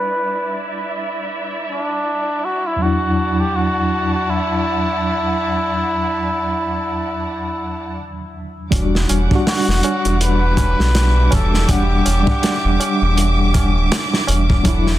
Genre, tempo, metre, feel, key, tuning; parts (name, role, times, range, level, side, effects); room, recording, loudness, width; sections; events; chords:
trip hop; 81 BPM; 4/4; swing 58% on 16ths; E minor; A4 = 439 Hz
trumpet with cup mute; melody; 0.0-13.9 s; D4 to B4; -22 LUFS; equal; vintage 12-bit sampler grit, dub echo
mellow tine electric piano; accompaniment; 0.0-15.0 s; E2 to F#5; -22 LUFS; equal; medium stereo tremolo, tape echo
warm studio violin section; sustained chords; 0.0-15.0 s; G3 to D6; -25 LUFS; equal
round analog bass; bass; 8.7-15.0 s; D1 to B1; -17 LUFS; equal
crunchy breakbeat drum kit; drums; 8.7-15.0 s; hi-hat, kick drum, snare drum; -18 LUFS; equal
tabla; percussion; 8.7-15.0 s; -32 LUFS; right 6 dB
light reverb, studio ambience; dense, heavily limited modern master, low-pass filter; -15 LUFS; side -14 dB against mid
0.0-8.7 A section; 8.7-15.0 B section
0.0 Em9; 2.8 Dadd9/E; 8.7 Em9